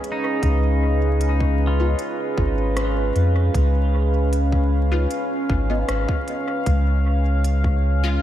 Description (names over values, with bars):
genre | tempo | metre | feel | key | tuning
ambient dub | 77 BPM | 4/4 | straight | Db mixolydian | A4 = 440 Hz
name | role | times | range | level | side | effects
deep dark ambient pad | sustained chords | 0.0-8.2 s | Db4 to Ab5 | -24 LUFS | right 1 dB | chorus, built-in reverb
organic electronic drum kit | drums | 0.0-7.6 s | hi-hat, rim click | -35 LUFS | left 1 dB | dub echo
pedal steel guitar | arpeggios | 0.1-8.2 s | Eb4 to F4 | -31 LUFS | equal | lush chorus, ping-pong delay
soft dub sub bass | bass | 0.4-8.2 s | Ab1 to F2 | -19 LUFS | equal | none
electronic kick drum | drums | 0.4-7.8 s | none | -25 LUFS | equal | none
filtered dub chord stab | stabs | 1.8-8.2 s | Ab3 to F4 | -33 LUFS | left 2 dB | phaser, ensemble chorus, dub echo
room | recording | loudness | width
moderate cathedral reverb, RT60 5.1 s | dreamy mix soaked in reverb, vinyl crackle | -18 LUFS | side -12 dB against mid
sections
0.0-8.2 A section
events
none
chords
0.0 Db7; 6.7 Bbm7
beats
| 0.43 1.21 1.99 2.77 | 3.55 4.33 5.11 5.88 | 6.66 7.44